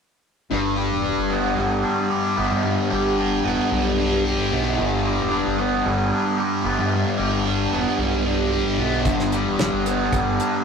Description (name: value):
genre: psychedelic rock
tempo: 112 BPM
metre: 4/4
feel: straight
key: G major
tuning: A4 = 440 Hz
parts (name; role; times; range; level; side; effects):
- fuzz guitar; riff; 0.5-10.6 s; G2 to G4; -20 LUFS; equal; distortion, phaser
- growling fingered electric bass; bass; 0.5-10.4 s; E1 to G2; -27 LUFS; equal; overdrive
- damped 70s drum kit; drums; 9.1-10.5 s; hi-hat, kick drum, snare drum; -25 LUFS; equal; none
room: moderate booth ambience, RT60 0.2 s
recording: rough rehearsal-room recording, tube saturation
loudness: -19 LUFS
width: side -6 dB against mid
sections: 0.5-10.6 A section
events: none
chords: 0.5 G